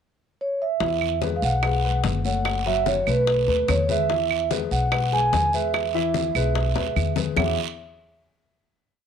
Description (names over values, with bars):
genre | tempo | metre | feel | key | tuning
Afro-Cuban jazz | 146 BPM | 4/4 | straight | E major | A4 = 442 Hz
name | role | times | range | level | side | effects
vibraphone with soft mallets | melody | 0.4-7.6 s | B4 to G#5 | -24 LUFS | right 3 dB | none
dark baby grand piano | accompaniment | 0.8-7.6 s | E3 to F#5 | -29 LUFS | left 11 dB | none
upright bass | bass | 0.8-7.6 s | F#1 to E2 | -26 LUFS | equal | none
bongos | percussion | 0.8-7.5 s | none | -31 LUFS | left 12 dB | none
congas | percussion | 0.8-7.5 s | none | -33 LUFS | left 9 dB | none
guiro | percussion | 0.8-7.5 s | none | -35 LUFS | right 13 dB | none
claves | percussion | 1.0-7.5 s | none | -28 LUFS | right 13 dB | none
room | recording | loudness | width
moderate spring reverb, RT60 1.2 s, small room ambience | 1960s-style stereo with parts hard left and right | -20 LUFS | side -8 dB against mid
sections
0.0-0.8 pickup bar; 0.8-7.4 A section; 7.4-9.0 final chord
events
drum fill 6.8-7.4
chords
0.0 N.C.; 0.8 E69; 2.5 F#m; 3.3 B7; 4.1 E; 7.4 E69